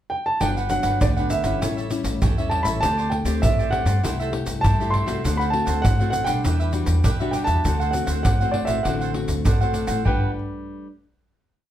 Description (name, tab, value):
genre	samba and choro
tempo	100 BPM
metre	4/4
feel	straight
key	G major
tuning	A4 = 440 Hz
part	warm grand piano	melody	0.1-10.3 s	D5 to C6	-25 LUFS	right 1 dB	none
part	cavaquinho	accompaniment	0.4-10.3 s	D4 to F#5	-30 LUFS	right 5 dB	none
part	nylon-string guitar	accompaniment	0.4-10.9 s	G2 to B4	-28 LUFS	left 4 dB	none
part	upright bass	bass	0.4-10.3 s	G1 to G2	-25 LUFS	equal	none
part	tube shaker, surdo and pandeiro	percussion	0.4-10.2 s	none	-24 LUFS	equal	none
room	wet studio reverb, RT60 0.5 s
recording	heard from further back in the room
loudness	-19 LUFS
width	side -11 dB against mid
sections	0.0-0.4 pickup bar; 0.4-10.1 A section; 10.1-11.7 final chord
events	none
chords	0.4 Gmaj7; 1.6 A7; 2.8 D7sus4; 4.0 C6; 5.2 D7; 6.4 Em9; 7.6 D7; 10.1 Gmaj7